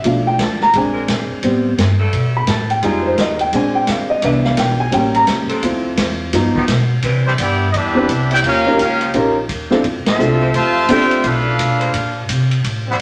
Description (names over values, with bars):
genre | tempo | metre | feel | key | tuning
jazz, big band swing | 171 BPM | 4/4 | swing 63% on 8ths | C major | A4 = 436 Hz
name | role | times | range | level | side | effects
warm baby grand piano | accompaniment | 0.0-11.2 s | E3 to B5 | -19 LUFS | equal | none
upright bass | bass | 0.0-13.0 s | A1 to C3 | -22 LUFS | equal | none
swinging big-band drum kit | drums | 0.0-12.7 s | hi-hat, kick drum, ride cymbal, snare drum | -25 LUFS | equal | none
warm saxophone section | sustained chords | 0.9-11.9 s | E3 to C5 | -28 LUFS | equal | none
bright trumpet section | melody | 7.3-13.0 s | G3 to A5 | -19 LUFS | equal | none
clear trombone section | second line | 7.3-12.9 s | C3 to G4 | -26 LUFS | equal | none
room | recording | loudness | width
wet studio reverb, RT60 0.9 s | none | -16 LUFS | mono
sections
0.0-7.0 A section; 7.0-13.0 B section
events
grand piano solo 0.0-7.0; band accent 10.0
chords
0.0 Bm7b5; 0.7 Bb9; 1.4 Am9; 2.8 Fm7; 3.5 Bb9; 4.2 Cmaj9; 4.9 A7b9; 5.6 Dm7; 6.3 Gaug7; 7.0 Cmaj9; 8.4 Eb9; 9.8 Dm9; 11.2 Bm7b5; 11.9 Bbadd9